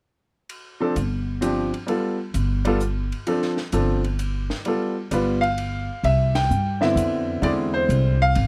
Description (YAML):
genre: jazz piano trio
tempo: 130 BPM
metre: 3/4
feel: swing 68% on 8ths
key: C major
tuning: A4 = 441 Hz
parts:
  - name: compact cocktail drum kit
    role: drums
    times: 0.5-8.5 s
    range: hi-hat, ride cymbal, snare drum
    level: -38 LUFS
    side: equal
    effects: none
  - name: clear grand piano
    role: melody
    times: 0.8-8.5 s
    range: D3 to G5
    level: -25 LUFS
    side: equal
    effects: none
  - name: upright bass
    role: bass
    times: 1.0-8.5 s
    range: G1 to G2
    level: -25 LUFS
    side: equal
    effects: none
room: little or no reverb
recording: close, detailed microphones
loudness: -23 LUFS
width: mono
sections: 0.5-6.0 A section; 6.0-8.5 B section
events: band accent 6.3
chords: 0.5 Dm7; 6.0 Cmaj9; 7.4 Eaug7